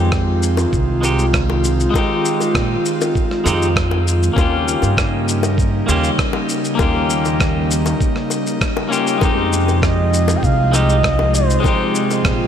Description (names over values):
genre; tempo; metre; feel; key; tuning
sunset chillout; 99 BPM; 4/4; straight; F minor; A4 = 438 Hz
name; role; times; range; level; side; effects
clean electric guitar; accompaniment; 0.0-12.5 s; Ab3 to G4; -21 LUFS; moving between left 6 dB and right 3 dB; auto-pan, ping-pong delay
airy breathy pad; sustained chords; 0.0-12.5 s; C3 to F4; -20 LUFS; equal; chorus
upright bass; bass; 0.0-12.4 s; C2 to Bb2; -18 LUFS; equal; none
electronic kick drum; drums; 0.1-12.4 s; none; -20 LUFS; equal; none
electronic rim click and shaker; drums; 0.1-12.4 s; none; -24 LUFS; left 1 dB; none
bongos; percussion; 0.6-12.2 s; none; -28 LUFS; left 6 dB; none
breathy flugelhorn; melody; 9.8-12.2 s; C5 to G5; -20 LUFS; right 2 dB; analog delay
room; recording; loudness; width
wet plate reverb, RT60 3.0 s; dreamy mix soaked in reverb; -14 LUFS; side -8 dB against mid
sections
0.0-12.5 A section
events
none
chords
0.0 Fm7; 4.4 Eb7; 9.2 Fm7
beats
0.13 0.73 1.34 | 1.95 2.55 3.16 3.76 | 4.37 4.98 5.58 6.19 | 6.79 7.40 8.01 8.61 | 9.22 9.82 10.43 11.04 | 11.64 12.25